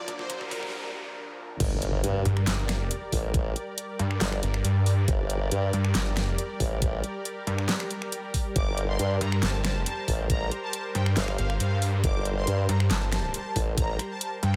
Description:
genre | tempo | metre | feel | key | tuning
heavy wobble dubstep | 138 BPM | 4/4 | half-time | G minor | A4 = 439 Hz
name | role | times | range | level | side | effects
soft supersaw | melody | 0.0-0.7, 8.6-14.6 s | Bb4 to D6 | -38 LUFS | equal | phaser, dub echo
lush unison pad | sustained chords | 0.0-14.6 s | Bb2 to D5 | -38 LUFS | equal | chorus, sidechain pumping
riser, noise sweep and impact | sound effects | 0.0-3.3 s | none | -38 LUFS | equal | none
dubstep drum kit | drums | 0.1-14.5 s | crash cymbal, finger snaps, handclaps, hi-hat, snare drum | -34 LUFS | equal | overdrive, high-pass filter on hats, high-pass filter on cymbals, high-pass filter on snare
electronic kick drum | drums | 0.1-13.9 s | none | -30 LUFS | equal | none
formant-sweep wobble bass | bass | 1.6-14.0 s | G1 to G2 | -30 LUFS | equal | chorus, overdrive
snarling distorted saw bass | bass | 2.3-14.6 s | G1 to G2 | -27 LUFS | equal | distortion, overdrive
room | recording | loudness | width
light reverb | high-pass filter | -27 LUFS | mono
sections
0.0-1.6 A section; 1.6-14.6 B section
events
build-up 0.0-1.6; drum fill 0.0-0.7; riser 0.0-0.7; noise sweep 0.0-1.6; break 0.7-1.6; drop 1.6-14.6; impact 1.6-3.3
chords
0.0 Bb; 1.6 Gm

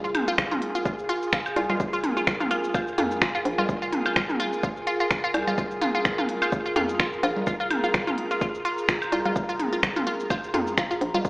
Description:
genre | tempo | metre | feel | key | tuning
minimal techno | 127 BPM | 4/4 | swing 56% on 16ths | F minor | A4 = 439 Hz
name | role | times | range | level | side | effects
resonant blip pluck | riff | 0.0-11.2 s | F4 | -28 LUFS | equal | phaser, sidechain pumping, dub echo
hollow knocking FM bass | bass | 0.0-11.3 s | F1 to F2 | -31 LUFS | equal | sidechain pumping
techno drum kit | drums | 0.0-11.3 s | cabasa, finger snaps, hi-hat | -26 LUFS | equal | small room ambience
warbly tape-like pad | texture | 0.0-11.3 s | F4 to Bb5 | -30 LUFS | equal | chorus, built-in reverb, phaser, sidechain pumping
electronic toms, woodblock and congas | percussion | 0.1-11.2 s | none | -29 LUFS | equal | overdrive, small room ambience, dub echo
electronic kick drum | drums | 0.4-11.3 s | none | -29 LUFS | equal | small room ambience
room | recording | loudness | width
moderate digital room reverb, RT60 0.9 s | played on a big sound system in a bare room, large studio reverb, AM radio sound | -22 LUFS | side -24 dB against mid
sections
0.0-11.3 A section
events
none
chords
0.0 Fm

